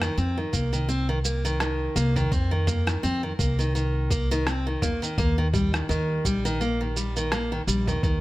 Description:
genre	folktronica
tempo	84 BPM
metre	4/4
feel	swing 56% on 16ths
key	unclear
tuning	A4 = 441 Hz
part	picked steel-string acoustic guitar	arpeggios	0.0-8.2 s	Eb3 to C4	-27 LUFS	equal	tape echo
part	upright bass	bass	0.0-8.2 s	Bb1 to F2	-26 LUFS	equal	tube saturation
part	lo-fi sampler-style drum kit	drums	0.0-8.2 s	rim click, shaker, toms	-31 LUFS	right 1 dB	overdrive
part	electronic kick drum	drums	0.5-8.2 s	none	-27 LUFS	equal	overdrive
room	small room ambience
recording	none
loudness	-23 LUFS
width	side -18 dB against mid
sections	0.0-8.2 A section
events	none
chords	0.0 F7sus4; 5.2 Eb

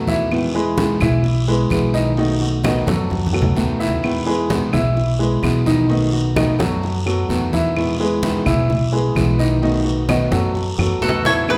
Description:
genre	latin, Cuban son and guajira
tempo	129 BPM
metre	4/4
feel	straight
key	E major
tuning	A4 = 441 Hz
part	nylon-string guitar	accompaniment	0.0-11.6 s	B2 to F#4	-25 LUFS	equal	none
part	upright bass	bass	0.0-11.6 s	B1 to F#2	-24 LUFS	equal	none
part	warm baby grand piano	arpeggios	0.1-11.4 s	D#3 to E5	-24 LUFS	equal	none
part	congas	percussion	0.1-11.6 s	none	-26 LUFS	equal	none
part	guiro	percussion	0.1-11.6 s	none	-34 LUFS	equal	none
part	claves	percussion	0.3-11.6 s	none	-35 LUFS	equal	none
part	Cuban tres	melody	11.0-11.6 s	A4 to C#5	-20 LUFS	equal	none
part	bright trumpet	second line	11.0-11.6 s	F#4 to A4	-30 LUFS	equal	none
room	wet recital hall reverb, RT60 1.4 s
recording	recorded in a church or concert hall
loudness	-18 LUFS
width	mono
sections	0.0-11.5 A section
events	drum fill 3.1-4.0, 10.8-11.5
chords	0.3 Emaj7; 2.2 B7; 4.0 Emaj7; 5.9 B7; 7.8 Emaj7; 9.6 B7

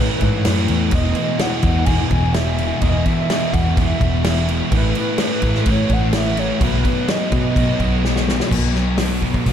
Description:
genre	rock, shoegaze and dream pop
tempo	127 BPM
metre	4/4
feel	straight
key	unclear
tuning	A4 = 440 Hz
part	pure sine lead	melody	0.0-8.3 s	B4 to G#5	-26 LUFS	equal	chorus, ping-pong delay
part	fuzz guitar	riff	0.0-9.5 s	E2 to B3	-20 LUFS	equal	distortion, wide subtle chorus
part	vintage muted picked electric bass	bass	0.0-9.5 s	E1 to B2	-20 LUFS	equal	none
part	loose indie drum kit	drums	0.2-9.5 s	crash cymbal, hi-hat, kick drum, snare drum	-21 LUFS	equal	none
room	moderate huge ambient reverb, RT60 7.9 s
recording	dreamy mix soaked in reverb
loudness	-15 LUFS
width	side -9 dB against mid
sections	0.0-8.5 A section; 8.5-9.5 B section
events	drum fill 8.0-8.5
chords	0.0 Asus2; 0.9 E5; 4.7 Asus2; 6.6 B5

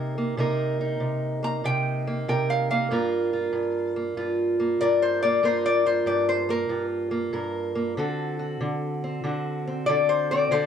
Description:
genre	acoustic country blues, solo or duo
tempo	95 BPM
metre	4/4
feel	swing 67% on 8ths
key	G minor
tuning	A4 = 440 Hz
part	fingerpicked steel-string acoustic guitar	accompaniment	0.0-10.7 s	G2 to Bb4	-25 LUFS	right 2 dB	none
part	lap resonator guitar	melody	1.4-10.7 s	Bb4 to Bb5	-23 LUFS	left 4 dB	none
room	wet booth ambience, RT60 0.2 s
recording	dark, warm production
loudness	-23 LUFS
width	side -8 dB against mid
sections	0.0-10.7 A section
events	resonator guitar played with a steel bar solo 0.0-10.7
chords	0.0 Cm7; 2.9 Gm7; 8.0 D7

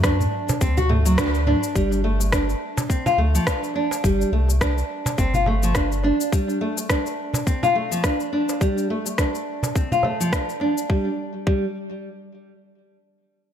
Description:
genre	organic downtempo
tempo	105 BPM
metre	4/4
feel	swing 57% on 16ths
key	unclear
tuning	A4 = 439 Hz
part	nylon-string guitar	arpeggios	0.0-11.6 s	F3 to F#4	-22 LUFS	equal	digital delay
part	warm sub bass	bass	0.0-6.1 s	G1 to F#2	-21 LUFS	equal	tube saturation, sidechain pumping
part	electronic kick drum	drums	0.0-11.7 s	none	-22 LUFS	equal	none
part	organic electronic drum kit	drums	0.0-10.9 s	cabasa, rim click, toms	-28 LUFS	left 1 dB	none
part	darbuka	percussion	0.5-10.7 s	none	-29 LUFS	right 1 dB	none
room	light reverb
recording	none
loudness	-19 LUFS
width	side -9 dB against mid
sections	0.0-1.8 A section; 1.8-10.9 B section; 10.9-13.2 C section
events	band accent 1.2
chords	0.0 D; 1.8 Gsus2; 10.9 N.C.

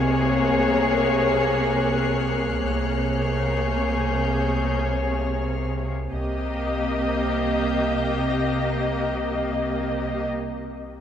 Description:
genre	cinematic, suspense film score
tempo	70 BPM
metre	4/4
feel	straight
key	C phrygian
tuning	A4 = 440 Hz
part	muted chamber violin section	melody	0.0-10.3 s	Db5 to Eb5	-28 LUFS	left 4 dB	none
part	muted chamber violin section	second line	0.0-10.3 s	G4 to Ab4	-28 LUFS	left 1 dB	none
part	muted symphonic viola section	accompaniment	0.0-10.3 s	Bb3	-29 LUFS	right 1 dB	none
part	muted chamber double bass section	bass	0.0-10.3 s	C2	-31 LUFS	right 3 dB	none
part	muted studio cello section	bass	0.0-10.3 s	C3	-29 LUFS	equal	none
part	pure sine sub bass	drone	0.0-10.3 s	C2	-31 LUFS	equal	none
part	Celtic harp	texture	0.0-4.8 s	Bb4 to Db5	-34 LUFS	left 3 dB	none
part	muted chamber violin section	texture	0.0-9.1 s	Eb6 to C7	-36 LUFS	left 6 dB	none
part	taiko ensemble	drums	0.5-0.9 s	none	barely audible	none	none
room	wet cathedral reverb, RT60 4.1 s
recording	recorded in a church or concert hall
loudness	-21 LUFS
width	side -9 dB against mid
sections	0.0-6.1 A section; 6.1-9.5 B section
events	none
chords	0.0 Bbm7/C

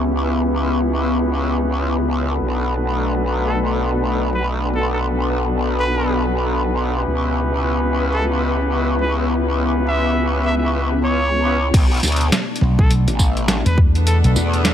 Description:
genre	glitch hop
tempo	103 BPM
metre	4/4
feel	swing 60% on 16ths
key	B minor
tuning	A4 = 441 Hz
part	warbly tape-like pad	sustained chords	0.0-14.7 s	B2 to E4	-24 LUFS	left 3 dB	chorus, built-in reverb, sidechain pumping
part	warm horn section	stabs	0.0-14.7 s	B3 to B4	-24 LUFS	equal	sidechain pumping, low-pass filter, ping-pong delay
part	growl bass	bass	0.0-14.7 s	A1 to E2	-20 LUFS	equal	chorus
part	clear trumpet	melody	3.5-14.3 s	A4 to E5	-26 LUFS	right 1 dB	vintage 12-bit sampler grit, ping-pong delay
part	boom bap sampler-style drum kit	drums	11.7-14.7 s	crash cymbal, hi-hat, snare drum, tambourine	-21 LUFS	right 1 dB	none
part	electronic kick drum	drums	11.7-13.9 s	none	-14 LUFS	equal	none
part	slap bass with an envelope filter	bass	12.6-14.3 s	B1 to E2	-15 LUFS	equal	none
room	light reverb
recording	none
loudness	-16 LUFS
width	side -10 dB against mid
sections	0.0-11.7 A section; 11.7-14.7 B section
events	drop 11.7-14.7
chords	0.0 C#m7b5; 2.4 Bm7; 7.1 C#m7b5; 11.7 Bm7

